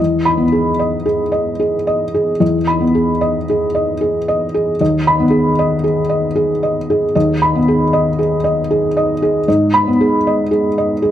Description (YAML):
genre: neoclassical minimalist piano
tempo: 76 BPM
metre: 3/4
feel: rubato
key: unclear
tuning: A4 = 440 Hz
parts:
  - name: felt-muted upright piano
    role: solo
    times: 0.0-11.1 s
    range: D#2 to B5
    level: -13 LUFS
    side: equal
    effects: none
room: light reverb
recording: close, detailed microphones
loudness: -13 LUFS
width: side -11 dB against mid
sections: 0.0-11.1 A section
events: none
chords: 0.0 Emaj7; 4.8 B6/D#; 9.5 G#m